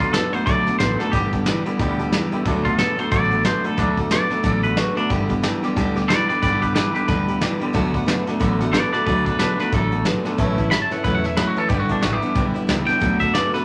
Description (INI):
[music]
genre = rockabilly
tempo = 182 BPM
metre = 4/4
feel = swing 60% on 8ths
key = D major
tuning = A4 = 440 Hz
[part]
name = twangy electric guitar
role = melody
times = 0.0-13.6 s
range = D4 to B5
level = -24 LUFS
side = equal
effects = none
[part]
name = honky-tonk upright piano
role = accompaniment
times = 0.0-13.6 s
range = A4 to D6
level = -34 LUFS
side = equal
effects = none
[part]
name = picked steel-string acoustic guitar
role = accompaniment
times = 0.0-13.6 s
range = G2 to G4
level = -28 LUFS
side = equal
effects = none
[part]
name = electric guitar through a small old amp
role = riff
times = 0.0-13.6 s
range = G2 to B3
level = -27 LUFS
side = equal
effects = none
[part]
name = upright bass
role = bass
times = 0.0-13.6 s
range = E1 to D2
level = -30 LUFS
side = equal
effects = none
[part]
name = soft brush drum kit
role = drums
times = 0.0-13.6 s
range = hi-hat, kick drum, snare drum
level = -26 LUFS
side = equal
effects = none
[sound]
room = moderate large studio reverb, RT60 1.2 s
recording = none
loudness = -20 LUFS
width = mono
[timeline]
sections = 0.0-13.6 A section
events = honky-tonk piano fill 1.5-2.5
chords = 0.0 D6; 1.1 G6; 2.5 D6; 5.1 G6; 7.7 D6; 10.4 A6; 11.7 G6; 13.0 D6